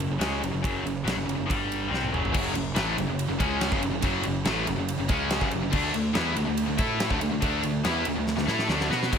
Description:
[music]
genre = hard rock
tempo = 141 BPM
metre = 4/4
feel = straight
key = F# minor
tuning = A4 = 440 Hz
[part]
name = cranked stack guitar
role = riff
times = 0.0-9.2 s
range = F#2 to B4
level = -30 LUFS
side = left 10 dB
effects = overdrive
[part]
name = heavy high-gain guitar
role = riff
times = 0.0-9.1 s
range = F#2 to B4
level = -31 LUFS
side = right 10 dB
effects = distortion
[part]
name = fuzz picked electric bass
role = bass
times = 0.0-9.2 s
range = F#1 to B2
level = -32 LUFS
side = equal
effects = overdrive
[part]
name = huge arena drum kit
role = drums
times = 0.0-9.2 s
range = crash cymbal, kick drum, ride cymbal, snare drum, toms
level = -30 LUFS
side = equal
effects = none
[part]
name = distorted electric guitar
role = riff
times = 2.3-9.2 s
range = F#2 to B4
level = -31 LUFS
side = equal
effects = overdrive
[sound]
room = light reverb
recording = none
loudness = -24 LUFS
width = side -7 dB against mid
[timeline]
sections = 0.0-2.3 A section; 2.3-9.1 B section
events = drum fill 1.9-2.3, 8.3-9.1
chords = 0.0 F#5; 1.5 G5; 1.9 F#5; 2.3 F#m; 5.7 D5

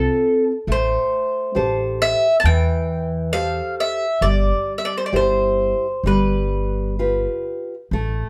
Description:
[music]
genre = fado-style ballad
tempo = 67 BPM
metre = 4/4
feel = rubato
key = unclear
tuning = A4 = 439 Hz
[part]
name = mandolin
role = melody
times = 0.0-7.4 s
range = A4 to A5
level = -22 LUFS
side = equal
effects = none
[part]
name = nylon-string guitar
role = accompaniment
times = 0.0-8.3 s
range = E3 to C5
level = -26 LUFS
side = equal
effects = none
[part]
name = upright bass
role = bass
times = 0.0-8.2 s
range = G1 to E2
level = -24 LUFS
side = equal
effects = none
[sound]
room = moderate studio reverb, RT60 0.6 s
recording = band playing live in one room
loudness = -20 LUFS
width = mono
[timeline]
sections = 0.0-8.3 A section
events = none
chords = 0.0 F; 0.7 Am7; 4.2 C/G; 6.0 G7

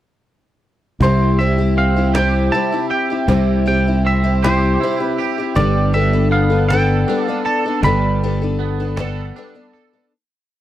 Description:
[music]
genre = folk rock and heartland rock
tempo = 53 BPM (dotted quarters)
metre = 6/8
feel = straight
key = C major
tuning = A4 = 443 Hz
[part]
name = twangy electric guitar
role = melody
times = 1.0-9.7 s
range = C5 to B5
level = -21 LUFS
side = equal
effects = tremolo
[part]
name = picked twelve-string acoustic guitar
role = accompaniment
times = 1.0-10.1 s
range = C3 to A4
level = -20 LUFS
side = left 5 dB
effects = none
[part]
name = twangy electric guitar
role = riff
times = 1.0-10.1 s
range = C3 to A4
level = -23 LUFS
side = right 12 dB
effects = ensemble chorus
[part]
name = fingered electric bass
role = bass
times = 1.0-9.3 s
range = G1 to C2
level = -17 LUFS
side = equal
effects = none
[part]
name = cajon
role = drums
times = 1.0-9.8 s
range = none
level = -22 LUFS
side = equal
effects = none
[sound]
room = little or no reverb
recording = dry, close 1970s-style studio recording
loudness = -14 LUFS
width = side -13 dB against mid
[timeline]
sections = 1.0-10.1 verse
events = fade-out 7.8-10.1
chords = 1.0 C; 5.6 Gadd9

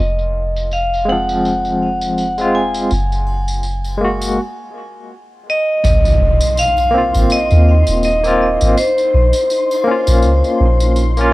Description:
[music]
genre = trip hop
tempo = 82 BPM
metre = 4/4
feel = swing 57% on 16ths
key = unclear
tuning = A4 = 440 Hz
[part]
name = vibraphone with hard mallets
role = melody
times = 0.0-10.9 s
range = C5 to Ab5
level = -17 LUFS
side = equal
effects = tape echo
[part]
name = soft 808-style bass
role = bass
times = 0.0-11.3 s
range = Eb1 to Eb2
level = -15 LUFS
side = equal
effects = none
[part]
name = tambourine and triangle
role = percussion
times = 0.2-11.3 s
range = none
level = -30 LUFS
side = equal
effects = none
[part]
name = barky tine electric piano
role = accompaniment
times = 1.1-11.3 s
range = F3 to Gb4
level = -18 LUFS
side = equal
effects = medium stereo tremolo
[part]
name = impact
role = sound effects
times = 5.8-8.8 s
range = none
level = -19 LUFS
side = equal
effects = none
[part]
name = flickering grainy texture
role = texture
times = 6.2-11.3 s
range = Eb4 to C6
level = -28 LUFS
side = right 1 dB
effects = built-in reverb
[sound]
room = small room ambience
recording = worn, warbling old tape, cassette tape, warbly pitch drift, low-pass filter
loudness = -12 LUFS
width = side -18 dB against mid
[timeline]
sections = 0.0-5.8 A section; 5.8-11.3 B section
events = filter sweep 0.0-5.8; break 4.4-5.8; impact 5.8-8.8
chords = 0.0 Fm; 2.9 Gbadd9; 5.8 Ab6; 8.8 Bbm

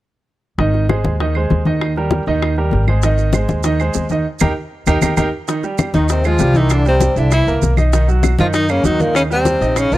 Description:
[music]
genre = Afro-Cuban jazz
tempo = 196 BPM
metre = 4/4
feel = straight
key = Ab major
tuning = A4 = 440 Hz
[part]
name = bright grand piano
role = accompaniment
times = 0.6-10.0 s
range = Eb3 to E5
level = -20 LUFS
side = right 3 dB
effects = none
[part]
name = upright bass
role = bass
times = 0.6-10.0 s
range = Ab1 to F#2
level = -17 LUFS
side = equal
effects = none
[part]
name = bongos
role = percussion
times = 0.6-9.9 s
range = none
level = -24 LUFS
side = left 6 dB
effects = none
[part]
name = congas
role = percussion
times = 0.6-10.0 s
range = none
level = -21 LUFS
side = left 3 dB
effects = none
[part]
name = claves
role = percussion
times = 0.9-9.9 s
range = none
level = -27 LUFS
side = right 7 dB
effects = none
[part]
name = maracas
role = percussion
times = 3.0-10.0 s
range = none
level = -30 LUFS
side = right 13 dB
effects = none
[part]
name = breathy tenor saxophone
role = melody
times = 5.9-10.0 s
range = A#3 to F4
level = -17 LUFS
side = equal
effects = none
[part]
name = bright trombone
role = second line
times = 5.9-10.0 s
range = A#2 to F3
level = -24 LUFS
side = left 4 dB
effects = none
[sound]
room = little or no reverb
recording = dry, close 1970s-style studio recording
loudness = -13 LUFS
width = side -16 dB against mid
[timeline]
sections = 0.6-5.5 A section; 5.5-10.0 B section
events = band accent 4.3-5.5; drum fill 4.7-5.5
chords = 0.6 Ab; 1.8 Eb; 3.0 Ab; 4.3 Eb; 5.5 Abmaj7; 6.7 C7; 7.9 Bmaj7; 9.2 Eb

